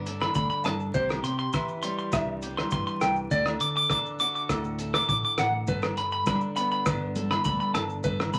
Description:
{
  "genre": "highlife guitar band",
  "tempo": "101 BPM",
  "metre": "4/4",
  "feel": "straight",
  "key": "G major",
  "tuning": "A4 = 440 Hz",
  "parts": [
    { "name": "electric guitar at the edge of break-up", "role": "accompaniment", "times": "0.0-8.4 s", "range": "G2 to A4", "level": "-37 LUFS", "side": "equal", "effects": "spring reverb" },
    { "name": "fingered electric bass", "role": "bass", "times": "0.0-8.4 s", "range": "G1 to D3", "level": "-37 LUFS", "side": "equal", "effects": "none" },
    { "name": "cloth-damped thuddy drum kit", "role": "drums", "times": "0.1-8.4 s", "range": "hi-hat, kick drum, rim click", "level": "-33 LUFS", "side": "equal", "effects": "none" },
    { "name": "maracas", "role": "percussion", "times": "0.1-8.4 s", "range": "none", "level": "-50 LUFS", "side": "equal", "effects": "none" },
    { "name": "clean electric guitar", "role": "arpeggios", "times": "0.2-8.4 s", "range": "A4 to D6", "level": "-30 LUFS", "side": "equal", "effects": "none" },
    { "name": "agogo bells", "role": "percussion", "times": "0.2-8.3 s", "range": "none", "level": "-43 LUFS", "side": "equal", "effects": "none" },
    { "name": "congas", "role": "percussion", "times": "5.7-8.4 s", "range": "none", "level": "-36 LUFS", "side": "equal", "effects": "none" }
  ],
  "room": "moderate club reverb, RT60 0.8 s",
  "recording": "vinyl crackle",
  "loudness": "-27 LUFS",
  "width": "mono",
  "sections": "0.0-8.4 A section",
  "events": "none",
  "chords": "0.0 Gadd9; 0.9 C; 3.3 D; 5.7 Gadd9"
}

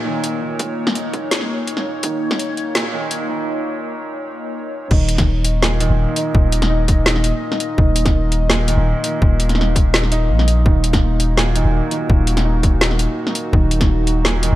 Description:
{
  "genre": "half-time drum and bass",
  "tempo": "167 BPM",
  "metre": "4/4",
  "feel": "half-time",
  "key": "Eb minor",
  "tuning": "A4 = 442 Hz",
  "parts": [
    { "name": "dark analog pad", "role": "sustained chords", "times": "0.0-14.6 s", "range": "Bb3 to Eb5", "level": "-25 LUFS", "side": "left 1 dB", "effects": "chorus, phaser, sidechain pumping" },
    { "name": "felt-muted upright piano", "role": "arpeggios", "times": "0.0-14.6 s", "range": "Bb2 to Eb4", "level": "-23 LUFS", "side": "right 3 dB", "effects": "vintage 12-bit sampler grit, digital delay" },
    { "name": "drum and bass drum kit", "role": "drums", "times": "0.2-14.5 s", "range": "crash cymbal, hi-hat, snare drum", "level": "-20 LUFS", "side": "equal", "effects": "none" },
    { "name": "electronic kick drum", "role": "drums", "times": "0.6-2.4, 4.9-13.9 s", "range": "none", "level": "-16 LUFS", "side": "equal", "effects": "high-pass filter on kick" },
    { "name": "long sustained 808-style bass", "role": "bass", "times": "4.9-14.6 s", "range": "Eb1 to Bb1", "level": "-17 LUFS", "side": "equal", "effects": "none" }
  ],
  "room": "light reverb, digital ambience",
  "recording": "high-pass filter",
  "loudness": "-15 LUFS",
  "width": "side -15 dB against mid",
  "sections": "0.0-4.9 A section; 4.9-14.6 B section",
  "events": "build-up 0.0-4.9; filter sweep 0.0-4.9; break 3.5-4.9; drop 4.9-14.6",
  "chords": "0.0 Eb5"
}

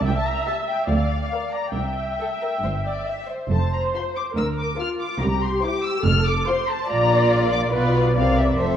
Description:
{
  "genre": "quick classical-period movement for string orchestra",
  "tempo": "140 BPM",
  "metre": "4/4",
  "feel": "uneven beats, rubato",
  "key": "unclear",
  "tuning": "A4 = 440 Hz",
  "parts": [
    { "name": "muted studio violin section", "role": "melody", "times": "0.0-8.8 s", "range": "D5 to F6", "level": "-27 LUFS", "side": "left 5 dB", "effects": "none" },
    { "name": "muted studio viola section", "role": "accompaniment", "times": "0.0-8.8 s", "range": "F4 to E5", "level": "-26 LUFS", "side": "equal", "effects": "none" },
    { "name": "muted studio cello section", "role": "bass", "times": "0.0-8.8 s", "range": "C2 to C3", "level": "-26 LUFS", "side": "right 2 dB", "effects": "none" },
    { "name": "muted studio double bass section", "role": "bass", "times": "0.1-8.8 s", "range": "F1 to D2", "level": "-24 LUFS", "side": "right 2 dB", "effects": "none" },
    { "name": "muted studio violin section", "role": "second line", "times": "0.5-8.8 s", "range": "C4 to F5", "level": "-25 LUFS", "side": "left 2 dB", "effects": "none" }
  ],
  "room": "moderate scoring stage reverb, RT60 2.0 s",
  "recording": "dark, warm production",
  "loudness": "-20 LUFS",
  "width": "side -9 dB against mid",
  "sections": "0.0-8.8 A section",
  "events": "none",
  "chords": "0.1 C; 0.9 Bb/D; 1.7 C; 3.5 F5; 4.4 Bb/D; 5.2 C; 6.1 F; 6.9 Bb; 7.7 Bdim; 8.2 C7"
}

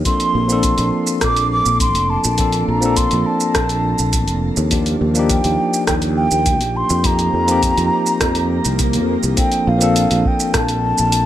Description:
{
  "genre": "sunset chillout",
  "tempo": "103 BPM",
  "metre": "4/4",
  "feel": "straight",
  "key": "Bb major",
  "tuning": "A4 = 440 Hz",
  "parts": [
    { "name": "tine electric piano", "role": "accompaniment", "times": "0.0-11.3 s", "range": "F3 to A4", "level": "-20 LUFS", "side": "left 1 dB", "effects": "auto-pan, ping-pong delay, shimmer reverb" },
    { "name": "sustaining fretless electric bass", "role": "bass", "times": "0.0-11.3 s", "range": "F1 to F2", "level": "-20 LUFS", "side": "equal", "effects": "tube saturation, wide subtle chorus" },
    { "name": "mellow baroque flute", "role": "melody", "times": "0.1-11.3 s", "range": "F5 to D6", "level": "-20 LUFS", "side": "equal", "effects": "ping-pong delay, shimmer reverb" },
    { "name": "deep house drum kit", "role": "drums", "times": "0.1-11.2 s", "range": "hi-hat, rim click, shaker", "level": "-22 LUFS", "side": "right 1 dB", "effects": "overdrive" },
    { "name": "electronic kick drum", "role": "drums", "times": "0.1-10.7 s", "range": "none", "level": "-21 LUFS", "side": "equal", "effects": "none" },
    { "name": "swell", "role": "sound effects", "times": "8.5-9.4 s", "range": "none", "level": "-25 LUFS", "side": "equal", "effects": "none" }
  ],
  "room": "light reverb, digital ambience",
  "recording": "none",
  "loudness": "-14 LUFS",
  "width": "side -12 dB against mid",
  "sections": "0.0-9.4 A section; 9.4-11.3 B section",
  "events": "swell 8.5-9.4",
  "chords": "0.1 Bbmaj9; 4.7 Ebmaj7; 7.0 F7sus4; 9.4 Bbmaj9"
}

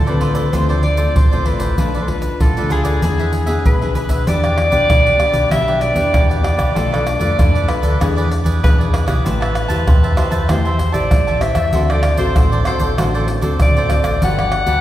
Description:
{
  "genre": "samba and choro",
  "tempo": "96 BPM",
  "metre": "4/4",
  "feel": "straight",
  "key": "E minor from 4.3 s",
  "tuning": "A4 = 438 Hz",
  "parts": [
    { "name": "mellow soprano saxophone", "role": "melody", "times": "0.0-14.8 s", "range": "G#4 to F#5", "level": "-20 LUFS", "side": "left 1 dB", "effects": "none" },
    { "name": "cavaquinho", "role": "accompaniment", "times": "0.0-14.8 s", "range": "D4 to A5", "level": "-25 LUFS", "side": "right 2 dB", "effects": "none" },
    { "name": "nylon-string guitar", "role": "accompaniment", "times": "0.0-14.8 s", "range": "A2 to C5", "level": "-25 LUFS", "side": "left 2 dB", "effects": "none" },
    { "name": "overdriven fingered electric bass", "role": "bass", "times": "0.0-14.8 s", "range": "G1 to D3", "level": "-19 LUFS", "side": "equal", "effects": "none" },
    { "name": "egg shaker, pandeiro, surdo and tamborim", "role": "percussion", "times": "0.1-14.8 s", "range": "none", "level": "-17 LUFS", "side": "equal", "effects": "none" }
  ],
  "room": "wet scoring stage reverb, RT60 2.0 s",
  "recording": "recorded in a church or concert hall",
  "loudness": "-13 LUFS",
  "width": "side -13 dB against mid",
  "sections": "0.0-4.3 A section; 4.3-14.8 B section",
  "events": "none",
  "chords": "0.0 Dm7; 1.8 Bm7b5; 3.0 E7; 4.3 Em7; 6.8 Bm7b5; 8.0 E7; 9.3 Am7; 11.7 D7; 14.2 Gmaj9"
}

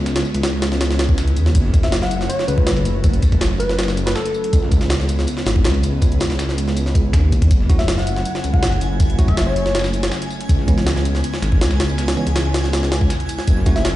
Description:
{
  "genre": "drum and bass, jungle",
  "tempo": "161 BPM",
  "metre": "4/4",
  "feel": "straight",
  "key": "unclear",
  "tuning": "A4 = 440 Hz",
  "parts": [
    { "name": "airy breathy pad", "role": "sustained chords", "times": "0.0-14.0 s", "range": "F#3 to E4", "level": "-27 LUFS", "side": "equal", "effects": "chorus" },
    { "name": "dark detuned saw bass", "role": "bass", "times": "0.0-14.0 s", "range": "F#1 to E2", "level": "-19 LUFS", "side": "equal", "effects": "none" },
    { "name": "dusty soul sampler-style drum kit", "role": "drums", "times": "0.1-13.9 s", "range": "hi-hat, snare drum, tambourine", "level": "-34 LUFS", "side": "right 1 dB", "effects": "high-pass filter on perc, studio ambience, high-pass filter on snare, high-pass filter on hats, high-pass filter on room" },
    { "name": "jungle sampler-style drum kit", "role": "drums", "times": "0.1-13.9 s", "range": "hi-hat, kick drum, snare drum", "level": "-18 LUFS", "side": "equal", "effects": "studio ambience" },
    { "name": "soft struck synth lead", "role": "melody", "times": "1.8-4.6, 7.8-9.8, 13.8-13.9 s", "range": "A4 to F#5", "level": "-25 LUFS", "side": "left 1 dB", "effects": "chorus, cassette tape, dub echo" },
    { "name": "twinkling granular texture", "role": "texture", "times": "8.1-14.0 s", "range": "G#5", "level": "-32 LUFS", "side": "right 1 dB", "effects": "built-in reverb" },
    { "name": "bell-like tine electric piano", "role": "stabs", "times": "7.7-13.8 s", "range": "E3 to F#4", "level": "-27 LUFS", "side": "right 2 dB", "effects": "vintage 12-bit sampler grit, dub echo" }
  ],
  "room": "light reverb",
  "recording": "played on a big sound system in a bare room, stone room reverb, nothing above 10.9 kHz",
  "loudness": "-15 LUFS",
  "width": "side -15 dB against mid",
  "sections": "0.0-14.0 A section",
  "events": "none",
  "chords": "0.0 C#m7; 1.5 F#m7; 4.5 C#m7; 7.5 F#m7; 10.5 C#m7"
}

